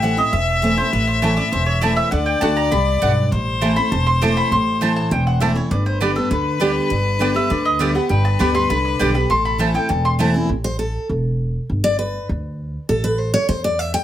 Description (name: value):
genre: bluegrass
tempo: 201 BPM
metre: 4/4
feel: straight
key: A dorian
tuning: A4 = 445 Hz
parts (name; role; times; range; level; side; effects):
- mandolin; melody; 0.0-10.1 s; A4 to D6; -22 LUFS; equal; plate reverb
- clear fiddle; second line; 0.0-10.3 s; A4 to E5; -23 LUFS; left 4 dB; none
- picked steel-string acoustic guitar; accompaniment; 0.0-14.0 s; E2 to G5; -20 LUFS; equal; none
- upright bass; bass; 0.0-13.9 s; E1 to E2; -22 LUFS; equal; none
- mandolin; stabs; 1.2-10.3 s; A3 to A5; -23 LUFS; right 5 dB; none
room: light reverb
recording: none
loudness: -16 LUFS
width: side -11 dB against mid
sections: 0.0-10.5 A section; 10.5-14.0 B section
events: steel-string acoustic guitar solo 10.5-14.0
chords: 0.0 Am; 2.1 D; 3.3 Am; 5.7 G; 9.3 Am; 11.7 G; 12.9 A5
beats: 0.03 0.33 0.63 | 0.93 1.23 1.52 1.82 | 2.12 2.42 2.72 3.02 | 3.32 3.62 3.92 4.22 | 4.52 4.82 5.11 5.41 | 5.71 6.01 6.31 6.61 | 6.91 7.21 7.51 7.80 | 8.10 8.40 8.70 9.00 | 9.30 9.60 9.90 10.20 | 10.50 10.80 11.10 11.39 | 11.69 11.99 12.29 12.59 | 12.89 13.19 13.49 13.79